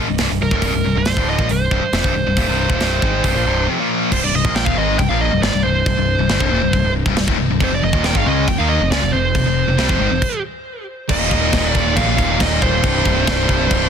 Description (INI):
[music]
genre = heavy metal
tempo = 138 BPM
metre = 4/4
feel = straight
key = C minor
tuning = A4 = 436 Hz
[part]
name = distorted electric guitar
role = riff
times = 0.0-13.9 s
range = C2 to Eb4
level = -22 LUFS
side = left 13 dB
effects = overdrive
[part]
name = high-gain distorted guitar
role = riff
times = 0.0-4.1, 7.6-13.9 s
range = C2 to Eb4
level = -23 LUFS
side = right 14 dB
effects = distortion
[part]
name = growling picked electric bass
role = bass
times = 0.0-13.9 s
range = C1 to Eb2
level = -21 LUFS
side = equal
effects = overdrive
[part]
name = tight metal drum kit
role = drums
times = 0.2-13.8 s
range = china cymbal, crash cymbal, hi-hat, kick drum, snare drum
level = -21 LUFS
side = equal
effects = soft clipping on kick
[part]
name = high-gain lead guitar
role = melody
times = 0.4-13.9 s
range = Bb4 to G5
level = -21 LUFS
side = right 3 dB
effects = distortion, tape echo
[part]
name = thick fuzz guitar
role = riff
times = 4.1-13.9 s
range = C2 to Eb4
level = -22 LUFS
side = equal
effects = distortion
[sound]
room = little or no reverb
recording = dense, heavily limited modern master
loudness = -14 LUFS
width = side -7 dB against mid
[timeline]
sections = 0.0-4.1 A section; 4.1-11.1 B section; 11.1-13.9 C section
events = break 3.7-4.1; stop 10.2-11.1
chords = 0.0 Cm; 7.6 F5; 11.1 Eb; 12.8 Cm